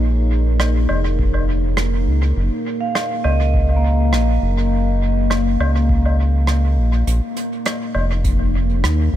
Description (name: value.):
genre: ambient dub.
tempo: 102 BPM.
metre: 4/4.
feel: swing 53% on 16ths.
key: Bb minor.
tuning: A4 = 439 Hz.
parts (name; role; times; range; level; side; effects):
deep dark ambient pad; sustained chords; 0.0-9.2 s; Bb3 to Db5; -24 LUFS; left 2 dB; chorus, built-in reverb.
vibraphone with medium hard mallets; arpeggios; 0.0-7.1 s; Bb3 to F5; -26 LUFS; right 1 dB; low-pass filter, dub echo.
round analog bass; bass; 0.0-9.2 s; F1 to Eb2; -16 LUFS; equal; tube saturation.
soft brush drum kit; drums; 0.6-9.0 s; hi-hat, rim click, woodblock; -26 LUFS; right 1 dB; dub echo.
electronic kick drum; drums; 1.2-8.4 s; none; -21 LUFS; equal; none.
room: studio ambience.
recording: none.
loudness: -15 LUFS.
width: side -12 dB against mid.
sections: 0.0-9.2 A section.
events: filter sweep on vibraphone 0.0-9.2.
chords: 0.0 Bbm7; 2.4 Gb69; 7.1 Bbm7.